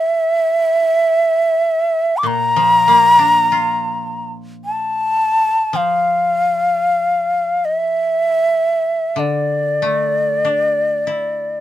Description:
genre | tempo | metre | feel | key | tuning
japanese traditional, Japanese chamber music | free time | none | none | D hirajoshi | A4 = 440 Hz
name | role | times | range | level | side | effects
breathy shakuhachi | melody | 0.0-11.6 s | D5 to D6 | -14 LUFS | equal | none
koto | accompaniment | 2.2-11.6 s | Bb2 to F4 | -24 LUFS | left 2 dB | none
room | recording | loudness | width
light reverb | close, detailed microphones | -13 LUFS | side -13 dB against mid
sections
0.0-11.6 A section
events
none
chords
none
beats
free time

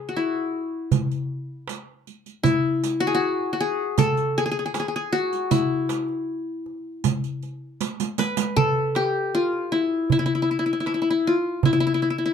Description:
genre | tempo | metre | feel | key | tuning
Arabic maqam ensemble | 78 BPM | 4/4 | straight | E maqam ajam, E maqam kurd from 8.6 s | A4 = 440 Hz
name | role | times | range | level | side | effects
qanun | melody | 0.0-12.3 s | E4 to B4 | -22 LUFS | left 3 dB | none
darbuka | percussion | 0.1-11.8 s | none | -24 LUFS | right 3 dB | none
riq | percussion | 0.9-8.6 s | none | -28 LUFS | right 8 dB | none
room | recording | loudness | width
moderate small room ambience, RT60 0.5 s | dark, warm production | -21 LUFS | side -7 dB against mid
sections
0.0-8.6 A section; 8.6-12.3 B section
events
drum fill 7.8-8.6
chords
none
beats
0.15 0.92 1.68 | 2.44 3.21 3.97 4.74 | 5.50 6.27 7.04 7.80 | 8.57 9.34 10.10 10.87 | 11.64

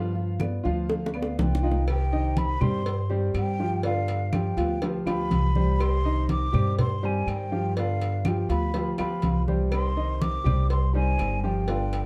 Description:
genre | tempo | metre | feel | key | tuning
latin, Cuban son and guajira | 122 BPM | 4/4 | straight | C harmonic minor | A4 = 440 Hz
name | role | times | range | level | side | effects
nylon-string guitar | accompaniment | 0.0-12.1 s | C3 to G4 | -37 LUFS | equal | none
warm grand piano | arpeggios | 0.0-12.1 s | D3 to F5 | -33 LUFS | equal | none
upright bass | bass | 0.0-12.1 s | G1 to G2 | -29 LUFS | equal | none
congas | percussion | 0.2-12.1 s | none | -31 LUFS | equal | none
bongos and cowbell | percussion | 0.4-12.1 s | none | -38 LUFS | equal | none
claves | percussion | 0.4-11.4 s | none | -46 LUFS | equal | none
mellow hollow concert flute | melody | 1.2-12.1 s | F5 to D6 | -34 LUFS | equal | slapback echo
room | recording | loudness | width
light reverb | dark, warm production | -26 LUFS | mono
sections
0.0-1.9 A section; 1.9-12.1 B section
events
drum fill 0.9-1.9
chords
0.0 G7; 1.9 Cm; 3.8 G7; 5.8 Cm; 7.8 G7; 9.7 Cm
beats
0.40 0.89 1.39 | 1.88 2.37 2.86 3.35 | 3.84 4.33 4.82 5.31 | 5.80 6.29 6.78 7.27 | 7.76 8.25 8.74 9.23 | 9.72 10.21 10.70 11.19 | 11.68

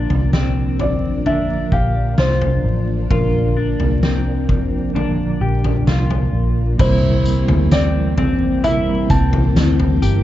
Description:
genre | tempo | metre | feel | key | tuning
dream pop | 65 BPM | 4/4 | straight | Bb lydian | A4 = 439 Hz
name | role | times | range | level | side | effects
felt-muted upright piano | melody | 0.0-10.2 s | Bb4 to A5 | -23 LUFS | equal | tape echo
mellow electric guitar | accompaniment | 0.0-10.2 s | Bb2 to Bb4 | -25 LUFS | right 4 dB | tremolo, analog chorus
ensemble organ-string | sustained chords | 0.0-10.2 s | E3 to G4 | -25 LUFS | equal | phaser, ensemble chorus
clean electric guitar | arpeggios | 0.0-10.2 s | C4 to G4 | -24 LUFS | left 4 dB | analog chorus, tape echo
vintage muted fingered electric bass | bass | 0.0-10.2 s | G1 to D2 | -18 LUFS | equal | none
oversized low-tuned drum kit | drums | 0.1-10.2 s | crash cymbal, kick drum, snare drum, tambourine, toms | -21 LUFS | equal | vintage 12-bit sampler grit
room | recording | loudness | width
light reverb | dark, warm production, vinyl crackle, nothing above 7.6 kHz | -14 LUFS | side -13 dB against mid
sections
0.0-6.8 A section; 6.8-10.2 B section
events
none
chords
0.0 Bb; 6.8 C7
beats
0.33 1.26 2.18 | 3.10 4.03 4.95 5.87 | 6.80 7.72 8.64 9.56

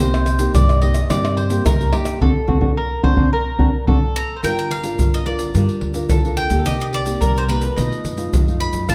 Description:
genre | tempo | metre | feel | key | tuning
samba and choro | 108 BPM | 4/4 | straight | G minor | A4 = 438 Hz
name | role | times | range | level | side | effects
mandolin | second line | 0.0-8.9 s | G4 to F5 | -27 LUFS | equal | none
nylon-string guitar | accompaniment | 0.0-8.9 s | G2 to Bb4 | -25 LUFS | equal | none
upright bass | bass | 0.0-8.9 s | G1 to G2 | -24 LUFS | equal | none
tube shaker, pandeiro, tamborim and surdo | percussion | 0.1-8.9 s | none | -22 LUFS | equal | none
bowl-back mandolin | melody | 4.2-8.9 s | B4 to B5 | -28 LUFS | equal | none
room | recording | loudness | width
moderate large studio reverb, RT60 1.4 s | none | -18 LUFS | mono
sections
0.0-4.4 A section; 4.4-8.9 B section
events
band accent 2.2-4.4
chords
0.0 Cm7; 2.2 D7b13; 4.4 Gm7; 6.7 Cm7; 7.8 B7#11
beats
0.55 1.10 1.66 | 2.21 2.77 3.32 3.88 | 4.43 4.99 5.55 6.10 | 6.66 7.22 7.78 8.33 | 8.89

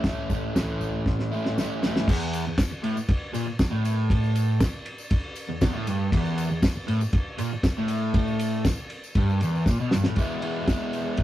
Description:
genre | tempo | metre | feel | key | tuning
garage rock duo or trio | 118 BPM | 4/4 | straight | E major | A4 = 440 Hz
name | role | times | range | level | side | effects
overdriven semi-hollow guitar | riff | 0.0-11.2 s | E2 to E4 | -26 LUFS | equal | none
cloth-damped thuddy drum kit | drums | 0.0-11.2 s | crash cymbal, kick drum, ride cymbal, snare drum, toms | -25 LUFS | equal | none
tambourine | percussion | 0.0-11.2 s | none | -46 LUFS | left 3 dB | none
room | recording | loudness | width
moderate stone room reverb, RT60 0.9 s | rough rehearsal-room recording, tube saturation | -23 LUFS | side -14 dB against mid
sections
0.0-2.1 A section; 2.1-10.2 B section; 10.2-11.2 C section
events
drum fill 1.1-2.1, 9.7-10.2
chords
0.0 A; 2.1 E5; 10.2 E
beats
| 0.05 0.56 1.07 1.57 | 2.08 2.59 3.10 3.60 | 4.11 4.61 5.12 5.62 | 6.13 6.63 7.14 7.64 | 8.15 8.66 9.16 9.67 | 10.18 10.68 11.19

